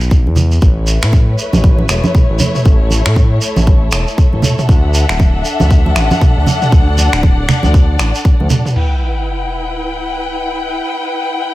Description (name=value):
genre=afro house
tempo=118 BPM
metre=4/4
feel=swing 60% on 16ths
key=E dorian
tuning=A4 = 440 Hz
part: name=smooth gliding synth bass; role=bass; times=0.0-8.5 s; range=D1 to A2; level=-14 LUFS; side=equal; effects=sidechain pumping
part: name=shekere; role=percussion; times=0.0-8.7 s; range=none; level=-24 LUFS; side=right 3 dB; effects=none
part: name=electronic kick drum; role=drums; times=0.1-8.4 s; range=none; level=-9 LUFS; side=equal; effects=studio reverb
part: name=congas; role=percussion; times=0.3-8.6 s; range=none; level=-17 LUFS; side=right 2 dB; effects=none
part: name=warm studio string section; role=sustained chords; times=0.6-11.5 s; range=A3 to G5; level=-19 LUFS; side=left 2 dB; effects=sidechain pumping
part: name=house drum kit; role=drums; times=1.0-8.9 s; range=crash cymbal, finger snaps, toms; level=-19 LUFS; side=equal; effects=low-pass filter on snare, studio reverb, low-pass filter on toms, low-pass filter on cymbals
part: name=sub drop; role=sound effects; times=8.8-10.8 s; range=none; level=-20 LUFS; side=equal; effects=none
room=small room ambience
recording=none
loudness=-10 LUFS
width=side -17 dB against mid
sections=0.0-8.8 A section; 8.8-11.5 B section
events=impact 8.8-10.8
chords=0.0 E5; 0.6 A; 4.7 D; 8.8 Em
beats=0.11 | 0.62 1.13 1.64 2.15 | 2.66 3.16 3.67 4.18 | 4.69 5.20 5.71 6.21 | 6.72 7.23 7.74 8.25 | 8.76 9.27 9.78 10.28 | 10.79 11.30